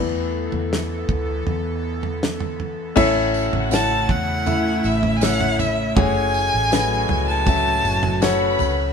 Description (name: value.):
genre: pop ballad.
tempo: 80 BPM.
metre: 4/4.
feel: straight.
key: A major.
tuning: A4 = 439 Hz.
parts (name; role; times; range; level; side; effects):
clear concert grand piano; accompaniment; 0.0-8.9 s; A2 to F#5; -23 LUFS; left 4 dB; none.
airy breathy pad; sustained chords; 0.1-8.9 s; A2 to A4; -27 LUFS; right 2 dB; chorus.
vintage muted fingered electric bass; bass; 0.0-8.9 s; F#1 to E2; -26 LUFS; equal; none.
damped 70s drum kit; drums; 0.5-8.8 s; crash cymbal, kick drum, snare drum, toms; -23 LUFS; right 2 dB; none.
warm studio violin section; second line; 3.0-8.9 s; G#3 to B5; -29 LUFS; left 1 dB; none.
tambourine; percussion; 3.3-8.8 s; none; -35 LUFS; right 7 dB; none.
warm violin; melody; 3.7-8.6 s; E5 to A5; -22 LUFS; equal; none.
room: moderate stone room reverb, RT60 1.1 s.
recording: band playing live in one room.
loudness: -18 LUFS.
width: side -6 dB against mid.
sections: 0.0-3.0 A section; 3.0-8.9 B section.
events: grand piano solo 0.0-3.0.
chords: 0.0 Esus4; 3.0 A; 6.0 F#madd9.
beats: 0.71 1.47 2.21 | 2.96 3.71 4.46 5.21 | 5.96 6.71 7.46 8.21.